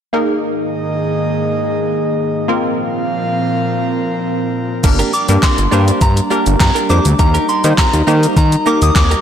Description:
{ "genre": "dance-pop", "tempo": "102 BPM", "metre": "4/4", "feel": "straight", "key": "unclear", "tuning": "A4 = 436 Hz", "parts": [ { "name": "wavetable chord stab", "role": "accompaniment", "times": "0.1-9.0 s", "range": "Bb3 to C5", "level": "-19 LUFS", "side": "left 1 dB", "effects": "phaser, sidechain pumping" }, { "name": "airy breathy pad", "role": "sustained chords", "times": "0.4-9.2 s", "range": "Ab2 to F5", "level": "-19 LUFS", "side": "equal", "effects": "chorus, sidechain pumping" }, { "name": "direct-recorded clean electric guitar", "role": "riff", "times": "4.8-9.2 s", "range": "D4 to Bb4", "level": "-23 LUFS", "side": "right 6 dB", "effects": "lush chorus" }, { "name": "fat analog bass", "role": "bass", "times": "4.8-9.1 s", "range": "G1 to Eb3", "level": "-13 LUFS", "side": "equal", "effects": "sidechain pumping" }, { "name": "pop drum kit", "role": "drums", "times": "4.8-9.2 s", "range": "crash cymbal, handclaps, hi-hat, kick drum, shaker, snare drum", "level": "-15 LUFS", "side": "equal", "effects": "overdrive" }, { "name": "soft synth bell", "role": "melody", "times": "5.1-9.2 s", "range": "Bb5 to Eb6", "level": "-18 LUFS", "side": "equal", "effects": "chorus" } ], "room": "moderate lush hall reverb, RT60 2.4 s", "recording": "blown-out, overdriven recording, overdrive", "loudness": "-12 LUFS", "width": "side -8 dB against mid", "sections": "0.1-4.8 A section; 4.8-9.2 B section", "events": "none", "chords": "0.1 Absus2; 2.5 Bbsus2; 4.8 Gm; 7.2 Eb" }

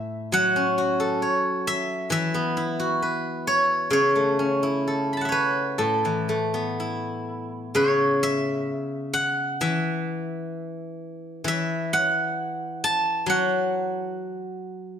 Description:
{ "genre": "chinese traditional, Chinese solo plucked strings", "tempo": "58-69 BPM", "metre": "4/4", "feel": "rubato", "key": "A gong mode", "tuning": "A4 = 440 Hz", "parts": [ { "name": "steel-string zither", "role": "solo", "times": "0.0-15.0 s", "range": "A2 to B5", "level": "-22 LUFS", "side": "equal", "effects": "none" } ], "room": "light reverb", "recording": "none", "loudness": "-22 LUFS", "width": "side -8 dB against mid", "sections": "0.0-7.8 A section; 7.8-15.0 B section", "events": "none", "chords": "none" }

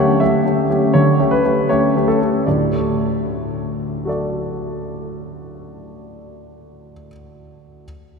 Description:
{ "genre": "classical-period piano sonatina", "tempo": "76-85 BPM", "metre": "4/4", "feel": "straight", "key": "D major", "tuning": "A4 = 441 Hz", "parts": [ { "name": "clear grand piano", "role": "solo", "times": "0.0-7.9 s", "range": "D2 to E5", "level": "-16 LUFS", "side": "equal", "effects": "none" } ], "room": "wet cathedral reverb, RT60 5.0 s", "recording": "minimal, uncompressed stereo recording", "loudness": "-15 LUFS", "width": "side -5 dB against mid", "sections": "0.0-2.5 A section; 2.5-5.6 B section", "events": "slowing down 0.0-2.5", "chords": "0.0 A7/D; 2.5 D" }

